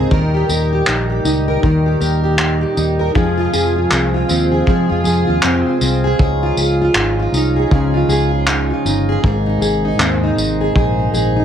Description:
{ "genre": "acoustic pop", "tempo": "79 BPM", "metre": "4/4", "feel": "swing 60% on 16ths", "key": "Ab major", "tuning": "A4 = 440 Hz", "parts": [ { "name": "fingerpicked plugged-in steel-string acoustic guitar", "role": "accompaniment", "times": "0.0-11.4 s", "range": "Ab2 to Bb4", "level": "-16 LUFS", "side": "equal", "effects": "double-tracked left and right" }, { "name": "percussive tonewheel organ", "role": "sustained chords", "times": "0.0-11.4 s", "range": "Bb2 to Ab4", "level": "-24 LUFS", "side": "left 1 dB", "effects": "slow rotary speaker" }, { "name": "fingered electric bass", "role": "bass", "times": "0.0-11.4 s", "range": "G1 to F2", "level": "-19 LUFS", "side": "equal", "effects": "none" }, { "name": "cloth-damped thuddy drum kit", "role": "drums", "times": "0.1-11.4 s", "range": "handclaps, kick drum, tambourine", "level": "-18 LUFS", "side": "equal", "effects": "none" } ], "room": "light reverb", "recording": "none", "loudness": "-13 LUFS", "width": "side -9 dB against mid", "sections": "0.0-11.4 A section", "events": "none", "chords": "0.1 Eb; 3.2 Fm; 6.2 Dbadd9; 9.2 Abadd9", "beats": "| 0.12 0.88 1.64 2.40 | 3.16 3.92 4.67 5.43 | 6.20 6.96 7.71 8.47 | 9.23 9.99 10.75" }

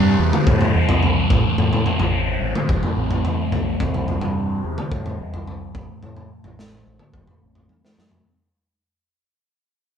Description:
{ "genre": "psychedelic rock", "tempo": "108 BPM", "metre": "4/4", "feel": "straight", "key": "unclear", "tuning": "A4 = 440 Hz", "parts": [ { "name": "thick fuzz guitar", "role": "riff", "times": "0.0-8.3 s", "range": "A2 to C4", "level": "-23 LUFS", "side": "equal", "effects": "distortion, phaser, low-pass filter" }, { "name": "growling fingered electric bass", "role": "bass", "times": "0.0-8.2 s", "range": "F#1 to A2", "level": "-23 LUFS", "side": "equal", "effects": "overdrive" }, { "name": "crunchy breakbeat drum kit", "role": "drums", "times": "0.3-8.2 s", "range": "kick drum, snare drum, toms", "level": "-21 LUFS", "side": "equal", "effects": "none" } ], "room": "moderate small room ambience, RT60 0.5 s", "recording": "band playing live in one room", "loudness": "-17 LUFS", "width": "side -8 dB against mid", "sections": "0.0-8.3 A section", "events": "fade-out 0.0-8.3; filter sweep on distorted electric guitar 0.0-8.3; drum fill 7.7-8.3", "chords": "0.0 C; 1.3 Am; 3.8 C; 5.8 Am", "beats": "0.47 1.02 | 1.58 2.13 2.69 3.25 | 3.80 4.36 4.92 5.47 | 6.03 6.59 7.14 7.70" }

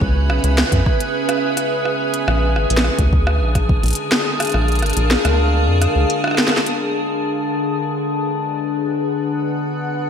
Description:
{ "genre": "IDM", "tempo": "106 BPM", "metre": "4/4", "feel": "straight", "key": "B melodic minor", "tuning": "A4 = 441 Hz", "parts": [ { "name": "icy glass pad", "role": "sustained chords", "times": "0.0-10.1 s", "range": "C#4 to F#5", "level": "-19 LUFS", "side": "left 1 dB", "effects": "chorus, built-in reverb" }, { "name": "rubbery square bass", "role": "bass", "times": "0.0-6.1 s", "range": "G#1 to F#2", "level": "-17 LUFS", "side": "equal", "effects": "none" }, { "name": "electronic kick drum", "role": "drums", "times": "0.0-3.8 s", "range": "none", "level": "-18 LUFS", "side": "equal", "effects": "none" }, { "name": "glitchy drum kit", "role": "drums", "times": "0.3-6.8 s", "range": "hi-hat, rim click, snare drum", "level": "-21 LUFS", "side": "equal", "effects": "low-pass filter on snare, low-pass filter on hats, tape echo" } ], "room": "wet recital hall reverb, RT60 1.5 s, digital ambience", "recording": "big arena sound", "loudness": "-16 LUFS", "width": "side -7 dB against mid", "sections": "0.0-6.8 A section; 6.8-10.1 B section", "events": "kick drops out 4.5-6.8; filter sweep on ambient pad 6.8-10.1", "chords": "0.0 C#m7; 2.3 A#7; 6.8 Bm6", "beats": "| 0.01 0.58 1.15 1.71 | 2.28 2.84 3.41 3.98 | 4.54 5.11 5.67 6.24 | 6.81 7.37 7.94 8.51 | 9.07 9.64" }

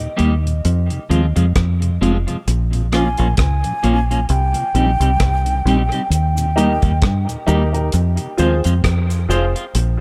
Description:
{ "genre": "dub reggae", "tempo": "66 BPM", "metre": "4/4", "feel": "swing 57% on 16ths", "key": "unclear", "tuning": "A4 = 439 Hz", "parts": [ { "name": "mellow tonewheel organ", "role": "accompaniment", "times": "0.0-9.6 s", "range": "Eb2 to F4", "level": "-27 LUFS", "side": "equal", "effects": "stopped rotary speaker, high-pass filter, dub echo" }, { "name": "clean electric guitar", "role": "accompaniment", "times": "0.2-9.6 s", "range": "F3 to G4", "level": "-25 LUFS", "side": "equal", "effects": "high-pass filter, dub echo" }, { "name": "deep dub fingered electric bass", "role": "bass", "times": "0.2-10.0 s", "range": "F1 to G2", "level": "-19 LUFS", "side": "equal", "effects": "none" }, { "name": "deep reggae drum kit", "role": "drums", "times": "0.2-10.0 s", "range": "hi-hat, kick drum, rim click", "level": "-24 LUFS", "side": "equal", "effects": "none" }, { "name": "mellow hollow concert flute", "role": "melody", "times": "2.9-7.4 s", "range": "G5 to Ab5", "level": "-26 LUFS", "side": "equal", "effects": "dub echo" }, { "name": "cabasa", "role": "percussion", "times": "6.1-9.5 s", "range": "none", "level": "-36 LUFS", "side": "equal", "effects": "high-pass filter on perc" }, { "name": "warm baby grand piano", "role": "stabs", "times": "6.6-9.5 s", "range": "Eb4 to C5", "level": "-25 LUFS", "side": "equal", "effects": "high-pass filter, dub echo" } ], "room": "light reverb, small room reverb", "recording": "none", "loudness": "-17 LUFS", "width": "mono", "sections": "0.0-10.0 A section", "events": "break 0.0-6.1; filter sweep 6.1-10.0; part muted 9.7", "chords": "0.0 Eb; 0.6 Fm; 2.5 Bbm; 4.3 Cm; 6.1 Eb; 7.9 Fm", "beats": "0.64 1.55 | 2.46 3.38 4.29 5.20 | 6.11 7.02 7.93 8.84 | 9.74" }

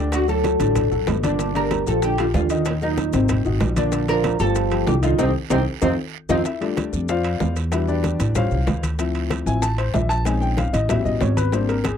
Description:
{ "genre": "Afro-Cuban jazz", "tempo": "189 BPM", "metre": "4/4", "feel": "straight", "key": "unclear", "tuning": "A4 = 440 Hz", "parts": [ { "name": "oud", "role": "melody", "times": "0.0-6.4 s", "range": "C4 to Bb4", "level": "-23 LUFS", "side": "equal", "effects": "none" }, { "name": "breathy trombone", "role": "second line", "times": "0.0-6.4 s", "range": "Bb2 to G3", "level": "-27 LUFS", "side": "right 18 dB", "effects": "none" }, { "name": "warm baby grand piano", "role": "accompaniment", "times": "0.0-12.0 s", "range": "C3 to A5", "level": "-24 LUFS", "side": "left 5 dB", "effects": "none" }, { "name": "upright bass", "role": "bass", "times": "0.0-11.9 s", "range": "G1 to F2", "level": "-22 LUFS", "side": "equal", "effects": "none" }, { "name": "bongos", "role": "percussion", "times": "0.1-12.0 s", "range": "none", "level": "-32 LUFS", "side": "left 8 dB", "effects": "none" }, { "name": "congas", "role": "percussion", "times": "0.1-12.0 s", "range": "none", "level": "-29 LUFS", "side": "left 1 dB", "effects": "none" }, { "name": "guiro", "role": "percussion", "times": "0.1-12.0 s", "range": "none", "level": "-40 LUFS", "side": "right 24 dB", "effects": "none" }, { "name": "maracas", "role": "percussion", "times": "0.1-12.0 s", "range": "none", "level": "-38 LUFS", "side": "left 22 dB", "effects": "none" }, { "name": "timbales", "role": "percussion", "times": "0.1-12.0 s", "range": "none", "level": "-30 LUFS", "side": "right 8 dB", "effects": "none" } ], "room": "little or no reverb", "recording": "dry, close 1970s-style studio recording, faint mains hum", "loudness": "-18 LUFS", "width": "side -8 dB against mid", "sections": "0.0-6.5 A section; 6.5-12.0 B section", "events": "drum fill 5.2-6.5; band accent 5.2-6.5; grand piano solo 6.5-12.0", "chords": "0.1 D; 1.4 Gm7; 2.7 Ebm; 3.3 Ab9; 3.9 Bb; 4.6 F13/G; 5.2 Cm; 5.8 F5; 6.5 F6; 7.7 Em7; 8.4 A7alt; 9.0 Dm7; 10.3 Bbm11; 10.9 A13", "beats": "| 0.13 0.44 0.76 1.08 | 1.39 1.71 2.02 2.34 | 2.66 2.97 3.29 3.61 | 3.92 4.24 4.56 4.87 | 5.19 5.50 5.82 6.14 | 6.46 6.77 7.09 7.41 | 7.72 8.04 8.36 8.68 | 8.99 9.31 9.63 9.94 | 10.26 10.58 10.89 11.21 | 11.53 11.85" }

